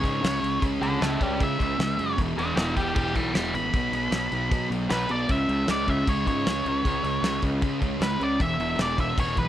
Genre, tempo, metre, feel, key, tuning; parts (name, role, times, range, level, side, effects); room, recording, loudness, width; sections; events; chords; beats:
garage rock duo or trio; 154 BPM; 4/4; straight; A4 = 437 Hz
octave-fuzz lead guitar; melody; 0.0-9.5 s; D4 to D6; -28 LUFS; equal; distortion
thick fuzz guitar; riff; 0.0-9.5 s; E2 to C#4; -27 LUFS; right 1 dB; distortion
fuzz fingered electric bass; bass; 0.0-9.5 s; E1 to C#3; -32 LUFS; equal; overdrive
cloth-damped thuddy drum kit; drums; 0.0-9.5 s; crash cymbal, kick drum, snare drum; -29 LUFS; equal
light reverb; -23 LUFS; side -12 dB against mid
0.0-9.5 A section
lead electric guitar solo 0.0-9.5
0.0 C#m; 2.2 E5; 3.7 B5; 5.3 C#5; 8.4 E5
0.23 | 0.62 1.01 1.40 1.79 | 2.18 2.57 2.96 3.35 | 3.74 4.13 4.51 4.90 | 5.29 5.68 6.07 6.46 | 6.85 7.24 7.62 8.01 | 8.40 8.79 9.18